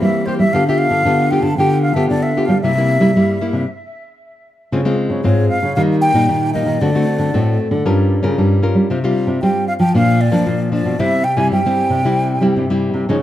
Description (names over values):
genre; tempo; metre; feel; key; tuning
samba and choro; 115 BPM; 4/4; straight; unclear; A4 = 440 Hz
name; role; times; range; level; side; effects
breathy concert flute; melody; 0.0-12.5 s; C5 to A5; -19 LUFS; equal; plate reverb, tape echo
nylon-string guitar; accompaniment; 0.0-13.2 s; G2 to Bb4; -18 LUFS; left 2 dB; none
nylon-string guitar; bass; 0.0-13.2 s; G2 to G3; -17 LUFS; right 1 dB; none
room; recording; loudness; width
light reverb; dark, warm production; -13 LUFS; side -12 dB against mid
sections
0.0-4.7 A section; 4.7-13.2 B section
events
stop 3.7-4.7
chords
0.0 C7/E; 0.5 G7/D; 2.6 C7; 4.7 Dbmaj7; 5.8 Eb; 6.8 D7; 7.9 Gm7b5; 8.9 Csus4; 10.0 Bb; 11.0 C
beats
0.01 | 0.54 1.06 1.58 2.11 | 2.63 3.15 3.68 4.20 | 4.72 5.25 5.77 6.29 | 6.81 7.34 7.86 8.38 | 8.90 9.43 9.95 10.47 | 11.00 11.52 12.04 12.57 | 13.09